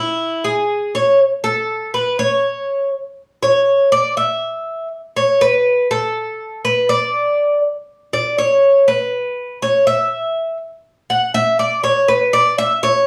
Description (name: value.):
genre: latin.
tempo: 121 BPM.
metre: 4/4.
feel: straight.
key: unclear.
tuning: A4 = 438 Hz.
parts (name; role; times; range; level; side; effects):
Cuban tres; solo; 0.0-13.1 s; E4 to F#5; -16 LUFS; equal; none.
room: wet small room reverb, RT60 0.5 s.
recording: band playing live in one room, studio reverb.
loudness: -17 LUFS.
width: mono.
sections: 0.0-1.2 A section; 1.2-13.1 B section.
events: Cuban tres solo 1.2-13.1.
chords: none.